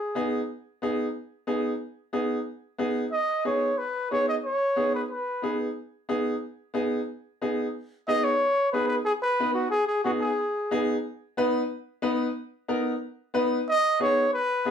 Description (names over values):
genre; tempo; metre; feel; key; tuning
latin; 182 BPM; 4/4; straight; G# minor; A4 = 441 Hz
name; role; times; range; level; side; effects
breathy trumpet; melody; 0.0-0.3, 3.1-5.6, 8.1-10.8, 13.7-14.7 s; F#4 to D#5; -24 LUFS; equal; none
bright upright piano; accompaniment; 0.2-14.7 s; B3 to B4; -26 LUFS; equal; none
room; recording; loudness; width
wet studio reverb, RT60 0.6 s; band playing live in one room; -25 LUFS; side -8 dB against mid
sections
0.0-8.4 A section; 8.4-14.7 B section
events
none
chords
0.0 G#m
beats
0.16 | 0.49 0.82 1.15 1.48 | 1.81 2.14 2.47 2.80 | 3.13 3.46 3.79 4.12 | 4.45 4.78 5.11 5.44 | 5.77 6.10 6.43 6.76 | 7.09 7.42 7.75 8.08 | 8.41 8.74 9.06 9.39 | 9.72 10.05 10.38 10.71 | 11.04 11.37 11.70 12.03 | 12.36 12.69 13.02 13.35 | 13.68 14.01 14.34 14.67